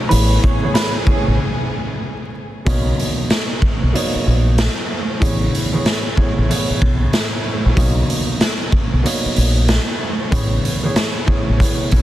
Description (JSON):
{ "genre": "hip hop, boom-bap hip-hop", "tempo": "94 BPM", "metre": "4/4", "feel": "swing 62% on 16ths", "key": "B major", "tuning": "A4 = 438 Hz", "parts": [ { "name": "rich studio string section", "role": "sustained chords", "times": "0.0-2.6 s", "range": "C#3 to G#4", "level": "-29 LUFS", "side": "left 1 dB", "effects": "none" }, { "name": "mellow electric guitar", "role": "melody", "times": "0.1-1.4 s", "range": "G#4 to C#6", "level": "-24 LUFS", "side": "right 2 dB", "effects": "tape echo" }, { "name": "warm upright piano", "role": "accompaniment", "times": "0.1-12.0 s", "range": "A2 to C#5", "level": "-22 LUFS", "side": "right 1 dB", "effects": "cassette tape" }, { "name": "deep dub fingered electric bass", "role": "bass", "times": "0.1-12.0 s", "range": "A1 to B1", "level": "-16 LUFS", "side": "equal", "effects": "none" }, { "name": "raw garage drum kit", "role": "drums", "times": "0.1-12.0 s", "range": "hi-hat, kick drum, shaker, snare drum", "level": "-18 LUFS", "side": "equal", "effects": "none" } ], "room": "little or no reverb", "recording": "dense, heavily limited modern master, vinyl crackle", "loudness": "-15 LUFS", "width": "side -14 dB against mid", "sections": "0.0-2.7 A section; 2.7-12.0 B section", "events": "break 1.4-2.7", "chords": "0.1 Amaj9; 2.7 Bmaj9; 5.2 Amaj9; 7.8 Bmaj9; 10.3 Amaj9" }